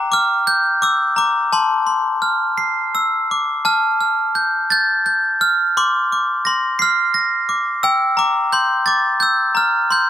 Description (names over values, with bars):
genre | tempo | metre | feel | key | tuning
children's music, lullaby | 58 BPM (dotted quarters) | 6/8 | rubato | F major | A4 = 439 Hz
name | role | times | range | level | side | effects
glockenspiel with brass mallets | solo | 0.0-10.1 s | G5 to C7 | -14 LUFS | equal | none
room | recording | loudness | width
light reverb | close, detailed microphones | -14 LUFS | side -11 dB against mid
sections
0.0-3.7 A section; 3.7-10.1 B section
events
none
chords
0.0 Gm; 1.5 F; 2.6 Cadd9; 3.7 Fadd9; 5.8 Bbadd9; 7.8 Gmadd9